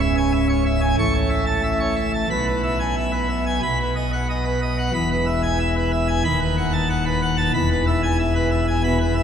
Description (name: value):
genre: classical, organ toccata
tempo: 92 BPM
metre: 4/4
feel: straight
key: E major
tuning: A4 = 440 Hz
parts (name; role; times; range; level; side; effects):
- pipe organ, plenum; solo; 0.0-9.2 s; C#1 to C#6; -18 LUFS; equal; none
room: wet cathedral reverb, RT60 5.6 s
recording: recorded in a church or concert hall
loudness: -18 LUFS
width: side -8 dB against mid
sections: 0.0-9.2 A section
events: none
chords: 0.0 C#m; 1.0 A; 2.3 E/B; 3.6 B; 5.0 E; 6.3 B7/D#; 7.5 E